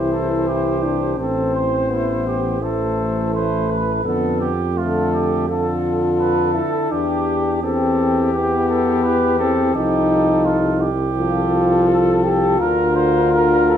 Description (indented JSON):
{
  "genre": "classical, brass quintet",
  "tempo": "84 BPM",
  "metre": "4/4",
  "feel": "straight",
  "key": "C major",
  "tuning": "A4 = 442 Hz",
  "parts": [
    { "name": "warm cornet", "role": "melody", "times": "0.0-13.8 s", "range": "G4 to C5", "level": "-24 LUFS", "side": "left 7 dB", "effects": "none" },
    { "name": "mellow trumpet", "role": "second line", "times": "0.0-13.8 s", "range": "E4 to C5", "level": "-24 LUFS", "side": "right 7 dB", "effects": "none" },
    { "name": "mellow French horn", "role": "accompaniment", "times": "0.0-13.8 s", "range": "A3 to G4", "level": "-20 LUFS", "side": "left 2 dB", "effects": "none" },
    { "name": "mellow trombone", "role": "accompaniment", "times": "0.0-13.8 s", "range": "D3 to F3", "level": "-26 LUFS", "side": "right 4 dB", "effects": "none" },
    { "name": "mellow bass trombone", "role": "bass", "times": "0.0-13.8 s", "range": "A1 to F2", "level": "-23 LUFS", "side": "right 1 dB", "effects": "none" }
  ],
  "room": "moderate recital hall reverb, RT60 1.5 s",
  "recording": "minimal, uncompressed stereo recording",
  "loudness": "-16 LUFS",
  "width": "side -9 dB against mid",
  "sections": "0.0-13.8 A section",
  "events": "none",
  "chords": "0.0 C; 1.2 Am; 4.0 Dm/F; 6.9 C/E; 9.8 F7/C; 12.6 Bb/D",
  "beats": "0.46 | 1.18 1.90 2.61 3.33 | 4.04 4.76 5.48 6.20 | 6.91 7.63 8.34 9.05 | 9.76 10.47 11.18 11.89 | 12.61 13.32"
}